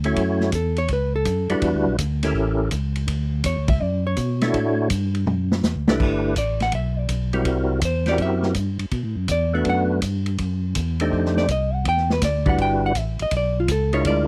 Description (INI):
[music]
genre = soul jazz organ trio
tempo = 164 BPM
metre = 4/4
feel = swing 66% on 8ths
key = D major, G major from 6.0 s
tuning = A4 = 439 Hz
[part]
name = percussive tonewheel organ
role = melody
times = 0.0-14.3 s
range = G3 to C#5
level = -24 LUFS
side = equal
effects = slow rotary speaker, overdrive, chorus vibrato
[part]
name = tonewheel organ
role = bass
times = 0.0-14.3 s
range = G1 to B2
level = -26 LUFS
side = equal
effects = overdrive, chorus vibrato, slow rotary speaker
[part]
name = vintage drum kit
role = drums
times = 0.0-14.2 s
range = crash cymbal, hi-hat, kick drum, ride cymbal, snare drum, toms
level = -27 LUFS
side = equal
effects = none
[part]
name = hollow-body jazz guitar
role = accompaniment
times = 0.6-14.3 s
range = F4 to G5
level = -26 LUFS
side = equal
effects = none
[sound]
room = light reverb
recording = dry, close 1970s-style studio recording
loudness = -22 LUFS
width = mono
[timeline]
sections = 0.0-6.0 A section; 6.0-14.3 A section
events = hollow-body jazz guitar solo 0.0-14.3; drum fill 5.3-6.0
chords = 0.2 F#m7; 1.6 Em7; 2.4 A7b9; 3.1 Dmaj9; 5.3 D13; 6.0 G6; 7.5 C7#11; 8.9 Bm7; 10.4 F#m7b5; 11.1 F13; 11.9 Em7; 13.3 Bdim